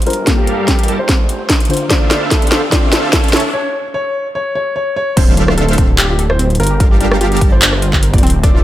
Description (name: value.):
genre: future bass.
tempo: 147 BPM.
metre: 4/4.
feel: swing 54% on 16ths, half-time.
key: D minor.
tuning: A4 = 440 Hz.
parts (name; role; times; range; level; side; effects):
soft round pluck; accompaniment; 0.0-3.5 s; D3 to C5; -22 LUFS; left 3 dB; chorus, sidechain pumping.
wide detuned saw bass; bass; 0.0-8.6 s; D1 to A1; -17 LUFS; equal; chorus, sidechain pumping, high-pass filter.
trap drum kit; drums; 0.0-8.5 s; crash cymbal, handclaps, hi-hat, rim click, snare drum; -16 LUFS; equal; none.
riser and impact; sound effects; 0.2-6.8 s; none; -24 LUFS; equal; none.
warm baby grand piano; melody; 0.1-8.6 s; G4 to D5; -20 LUFS; left 1 dB; sidechain pumping, low-pass filter, dub echo.
dense compressed supersaw; riff; 0.3-8.6 s; G3 to A5; -20 LUFS; right 2 dB; sidechain pumping, low-pass filter.
electronic kick drum; drums; 0.3-8.5 s; none; -13 LUFS; equal; none.
wide unison pluck; arpeggios; 5.2-8.6 s; C4 to D5; -23 LUFS; left 1 dB; sidechain pumping, dub echo.
room: light reverb, digital ambience.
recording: none.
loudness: -11 LUFS.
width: side -14 dB against mid.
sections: 0.0-5.2 A section; 5.2-8.6 B section.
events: build-up 0.0-5.2; drum fill 0.0-3.5; filter sweep on grand piano 0.0-5.2; riser 0.2-3.5; break 3.5-5.2; drop 5.2-8.6; impact 5.2-6.8.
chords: 0.1 Gm7; 1.7 Dm7; 3.3 A; 5.2 Dm7; 6.6 Gm7.